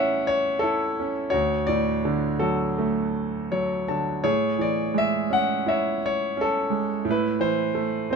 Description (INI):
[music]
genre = classical, lyrical solo piano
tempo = 85 BPM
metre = 4/4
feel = rubato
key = A major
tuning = A4 = 440 Hz
[part]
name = bright concert grand piano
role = solo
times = 0.0-8.2 s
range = D2 to A5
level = -22 LUFS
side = right 1 dB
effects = none
[sound]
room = light reverb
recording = close, detailed microphones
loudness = -22 LUFS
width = side -5 dB against mid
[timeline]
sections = 0.0-8.2 A section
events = grand piano fill 3.1-4.2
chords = 0.0 A7; 1.3 D; 4.2 Amaj7; 7.1 Amadd9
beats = 0.64 | 1.34 2.04 2.77 3.51 | 4.24 4.96 5.67 6.37 | 7.06 7.76